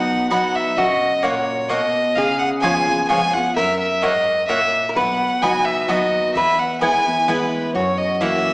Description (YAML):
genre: bluegrass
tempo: 129 BPM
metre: 3/4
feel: straight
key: B major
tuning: A4 = 439 Hz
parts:
  - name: dark fiddle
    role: melody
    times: 0.0-8.5 s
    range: B4 to G#5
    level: -18 LUFS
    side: equal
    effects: none
  - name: lap resonator guitar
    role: second line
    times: 0.0-8.5 s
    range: D#4 to B4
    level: -24 LUFS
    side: equal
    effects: none
  - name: picked steel-string acoustic guitar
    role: accompaniment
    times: 0.0-8.5 s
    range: E2 to F#4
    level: -24 LUFS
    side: equal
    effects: none
  - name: upright bass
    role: bass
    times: 0.0-8.5 s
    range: F#1 to F#2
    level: -34 LUFS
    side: equal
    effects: none
  - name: mandolin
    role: stabs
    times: 0.3-8.3 s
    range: A#3 to B5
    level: -24 LUFS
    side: equal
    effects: none
room: wet recital hall reverb, RT60 1.4 s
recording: recorded in a church or concert hall, small speaker sound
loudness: -16 LUFS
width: side -30 dB against mid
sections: 0.0-8.5 A section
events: none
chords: 0.0 B; 0.8 F#; 2.2 C#7; 3.6 F#; 5.0 B; 6.4 E; 7.8 F#7